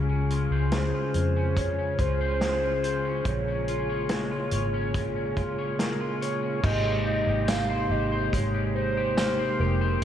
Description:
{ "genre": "dream pop", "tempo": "71 BPM", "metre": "4/4", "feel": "straight", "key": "Ab major", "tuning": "A4 = 440 Hz", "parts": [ { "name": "mellow tonewheel organ", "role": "sustained chords", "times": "0.0-10.0 s", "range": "C3 to Ab4", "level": "-30 LUFS", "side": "right 1 dB", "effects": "slow rotary speaker" }, { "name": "electric guitar at the edge of break-up", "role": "arpeggios", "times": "0.0-10.0 s", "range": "Bb2 to Db5", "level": "-31 LUFS", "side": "left 5 dB", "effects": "analog chorus, diffuse ambient delay" }, { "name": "vintage muted fingered electric bass", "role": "bass", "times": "0.0-10.0 s", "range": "F1 to F2", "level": "-29 LUFS", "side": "equal", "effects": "none" }, { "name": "vintage drum kit", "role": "drums", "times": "0.3-10.0 s", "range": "crash cymbal, hi-hat, kick drum, snare drum, tambourine", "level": "-31 LUFS", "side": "equal", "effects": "none" }, { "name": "hollow clarinet-like synth lead", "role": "melody", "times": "0.7-10.0 s", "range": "Bb4 to F5", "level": "-30 LUFS", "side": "equal", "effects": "chorus, diffuse ambient delay" } ], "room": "moderate plate reverb, RT60 3.0 s", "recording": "dreamy mix soaked in reverb", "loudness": "-24 LUFS", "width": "side -10 dB against mid", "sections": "0.0-6.6 A section; 6.6-10.0 B section", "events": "none", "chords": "0.0 Dbmaj7; 3.3 Bbm7; 6.6 Abmaj9" }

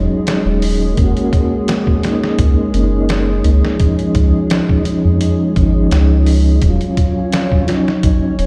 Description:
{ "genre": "trip hop", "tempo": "85 BPM", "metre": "4/4", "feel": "swing 54% on 16ths", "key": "Eb minor", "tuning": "A4 = 440 Hz", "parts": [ { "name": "percussive tonewheel organ", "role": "accompaniment", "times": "0.0-8.5 s", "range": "F3 to Gb4", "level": "-19 LUFS", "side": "equal", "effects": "chorus vibrato, slow rotary speaker, tremolo, tape echo" }, { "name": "dark analog pad", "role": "sustained chords", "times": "0.0-8.5 s", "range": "Ab3 to Db5", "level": "-24 LUFS", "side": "equal", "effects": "chorus" }, { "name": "soft dub sub bass", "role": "bass", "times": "0.0-8.5 s", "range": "Eb1 to F2", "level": "-16 LUFS", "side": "equal", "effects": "none" }, { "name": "trip hop sampler-style drum kit", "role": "drums", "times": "0.3-8.5 s", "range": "hi-hat, kick drum, snare drum", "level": "-20 LUFS", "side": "equal", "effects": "none" } ], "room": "light reverb", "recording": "played on a big sound system in a bare room, large studio reverb", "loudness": "-14 LUFS", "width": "mono", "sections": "0.0-8.5 A section", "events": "none", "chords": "0.0 Ebm7; 1.0 Gb; 3.8 Dbadd9; 6.6 Ebm7" }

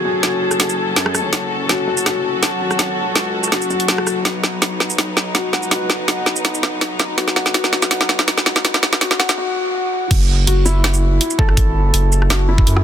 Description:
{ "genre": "half-time drum and bass", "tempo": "164 BPM", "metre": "4/4", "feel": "half-time", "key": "F# dorian", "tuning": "A4 = 440 Hz", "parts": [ { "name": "dark studio string section", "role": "sustained chords", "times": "0.0-9.3 s", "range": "F#3 to A4", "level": "-22 LUFS", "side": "left 1 dB", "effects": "sidechain pumping" }, { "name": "felt-muted upright piano", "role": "arpeggios", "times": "0.0-12.8 s", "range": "E4 to F#5", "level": "-22 LUFS", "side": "left 3 dB", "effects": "low-pass filter, dub echo" }, { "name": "saturated sub bass", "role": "bass", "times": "0.0-12.8 s", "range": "F#1 to F#2", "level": "-21 LUFS", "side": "equal", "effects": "tube saturation, high-pass filter" }, { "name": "drum and bass drum kit", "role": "drums", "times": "0.2-12.8 s", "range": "crash cymbal, hi-hat, rim click, shaker, snare drum", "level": "-18 LUFS", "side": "right 1 dB", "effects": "overdrive" }, { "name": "electronic kick drum", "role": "drums", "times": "10.1-12.7 s", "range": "none", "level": "-15 LUFS", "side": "equal", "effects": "overdrive" } ], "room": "light reverb", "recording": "dense, heavily limited modern master, high-pass filter", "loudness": "-14 LUFS", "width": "side -9 dB against mid", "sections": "0.0-10.1 A section; 10.1-12.8 B section", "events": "build-up 0.0-10.1; drum fill 0.0-9.4; filter sweep on felt piano 0.0-10.1; break 9.4-10.1; drop 10.1-12.8", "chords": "0.0 F#madd9; 4.3 B; 10.1 F#madd9" }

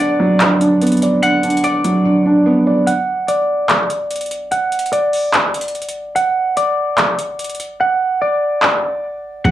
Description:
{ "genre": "hip hop, trap", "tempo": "146 BPM", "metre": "4/4", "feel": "half-time", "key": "unclear", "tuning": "A4 = 441 Hz", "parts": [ { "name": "felt-muted upright piano", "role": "accompaniment", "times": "0.0-2.9 s", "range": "D3 to D5", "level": "-13 LUFS", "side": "right 1 dB", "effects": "low-pass filter" }, { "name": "semi-hollow electric guitar", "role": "arpeggios", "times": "0.0-9.5 s", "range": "D5 to F#5", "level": "-18 LUFS", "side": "equal", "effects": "low-pass filter, tape echo" }, { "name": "booming analog drum machine", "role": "drums", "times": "0.4-9.5 s", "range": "handclaps, hi-hat, kick drum", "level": "-17 LUFS", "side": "equal", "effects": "none" }, { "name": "long sustained 808-style bass", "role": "bass", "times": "9.4-9.5 s", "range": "F#1", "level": "-18 LUFS", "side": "equal", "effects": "none" } ], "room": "moderate studio reverb, RT60 0.5 s", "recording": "home recording on cassette, small room reverb, faint mains hum", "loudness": "-13 LUFS", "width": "side -13 dB against mid", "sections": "0.0-2.9 A section; 2.9-9.5 B section", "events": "break 2.9-9.4; filter sweep 2.9-9.4; hi-hats muted 7.8-9.4", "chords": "0.0 Bm; 2.9 D" }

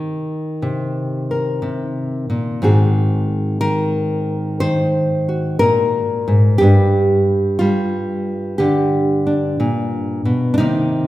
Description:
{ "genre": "solo jazz", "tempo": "60 BPM", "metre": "4/4", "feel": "swing 67% on 8ths", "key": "unclear", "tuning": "A4 = 443 Hz", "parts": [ { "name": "nylon-string guitar", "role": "solo", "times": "0.0-11.1 s", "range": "G2 to Eb5", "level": "-15 LUFS", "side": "equal", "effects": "none" } ], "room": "wet recital hall reverb, RT60 1.8 s", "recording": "recorded in a church or concert hall", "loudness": "-15 LUFS", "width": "side -15 dB against mid", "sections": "0.0-11.1 A section", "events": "none", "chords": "0.0 Cm7; 2.6 Ab7; 6.6 Gm7" }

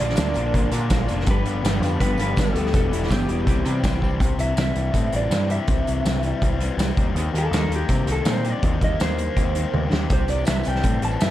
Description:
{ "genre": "indie rock", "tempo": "163 BPM", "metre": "4/4", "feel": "straight", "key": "C major", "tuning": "A4 = 440 Hz", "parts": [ { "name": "electric guitar through a small old amp", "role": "melody", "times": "0.0-11.3 s", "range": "G4 to A5", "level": "-28 LUFS", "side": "equal", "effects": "slapback echo" }, { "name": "brassy analog pad", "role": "sustained chords", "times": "0.0-4.2, 10.1-11.3 s", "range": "B3 to D6", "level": "-37 LUFS", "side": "equal", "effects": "none" }, { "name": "crunchy overdriven guitar", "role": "riff", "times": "0.0-11.3 s", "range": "E2 to G4", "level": "-31 LUFS", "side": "right 4 dB", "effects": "ensemble chorus, slapback echo" }, { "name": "fuzz guitar", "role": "riff", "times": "0.0-11.3 s", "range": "E2 to G4", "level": "-28 LUFS", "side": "left 6 dB", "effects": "distortion" }, { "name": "growling picked electric bass", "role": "bass", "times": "0.0-11.3 s", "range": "E1 to C3", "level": "-25 LUFS", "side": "equal", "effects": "overdrive" }, { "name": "loose indie drum kit", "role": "drums", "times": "0.1-11.3 s", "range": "hi-hat, kick drum, snare drum, tambourine, toms", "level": "-23 LUFS", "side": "equal", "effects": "none" }, { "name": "tambourine", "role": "percussion", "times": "0.2-4.1, 10.3-11.3 s", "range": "none", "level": "-48 LUFS", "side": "right 4 dB", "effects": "none" } ], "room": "light reverb", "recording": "dark, warm production", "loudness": "-19 LUFS", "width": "side -13 dB against mid", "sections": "0.0-4.2 A section; 4.2-11.3 B section", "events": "drum fill 4.0, 9.7-10.1; clean electric guitar solo 4.2-11.3", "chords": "0.0 Bbmaj7; 1.3 G7; 2.7 Em7; 3.5 Cmaj7; 4.2 C; 7.0 Eb6; 10.1 C" }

